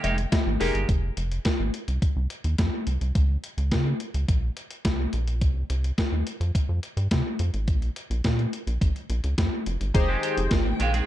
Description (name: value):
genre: early-eighties boogie funk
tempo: 106 BPM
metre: 4/4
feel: straight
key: F minor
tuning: A4 = 440 Hz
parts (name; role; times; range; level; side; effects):
- hollow clarinet-like synth lead; melody; 0.0-0.3, 10.8-10.9 s; F5; -36 LUFS; right 4 dB; chorus
- dark studio string section; sustained chords; 0.0-0.9, 9.9-11.1 s; Eb3 to G5; -37 LUFS; equal; none
- semi-hollow electric guitar; riff; 0.0-0.9, 9.9-11.1 s; Eb3 to Ab4; -30 LUFS; right 5 dB; lush chorus
- rubbery square bass; bass; 0.0-11.0 s; F1 to Db3; -25 LUFS; equal; none
- clean 12-bit digital drum machine; drums; 0.0-11.1 s; hi-hat, kick drum, snare drum; -26 LUFS; equal; none
- cowbell; percussion; 0.0-0.5 s; none; -35 LUFS; left 6 dB; none
- chorused polysynth; accompaniment; 0.6-0.7, 9.9-10.5 s; Eb4 to C5; -28 LUFS; left 3 dB; none
room: little or no reverb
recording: dark, warm production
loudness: -23 LUFS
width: side -13 dB against mid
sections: 0.9-9.9 A section; 9.9-11.1 B section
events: none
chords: 0.0 Fm11; 0.9 F5; 3.2 Bbmadd9; 5.4 Csus4; 7.7 N.C.; 9.9 Fm9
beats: 0.32 | 0.89 1.45 2.02 2.58 | 3.15 3.72 4.28 4.85 | 5.42 5.98 6.55 7.11 | 7.68 8.25 8.81 9.38 | 9.94 10.51